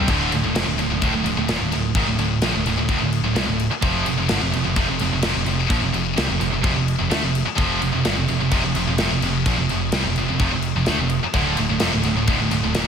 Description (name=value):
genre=heavy metal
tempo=128 BPM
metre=4/4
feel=straight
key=D minor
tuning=A4 = 440 Hz
part: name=heavy high-gain guitar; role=riff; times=0.0-12.9 s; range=D2 to A3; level=-24 LUFS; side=left 10 dB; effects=distortion
part: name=scooped high-gain guitar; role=riff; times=0.0-12.9 s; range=D2 to A3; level=-22 LUFS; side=right 7 dB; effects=distortion
part: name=modern bright picked electric bass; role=bass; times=0.0-12.9 s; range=D1 to D2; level=-26 LUFS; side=left 1 dB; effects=none
part: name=tight metal drum kit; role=drums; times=0.1-12.9 s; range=crash cymbal, kick drum, snare drum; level=-25 LUFS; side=left 1 dB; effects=none
room=moderate lush hall reverb, RT60 2.3 s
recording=big arena sound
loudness=-18 LUFS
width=side -7 dB against mid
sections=0.1-12.9 A section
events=none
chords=0.1 Dm; 3.8 F5; 11.3 Dm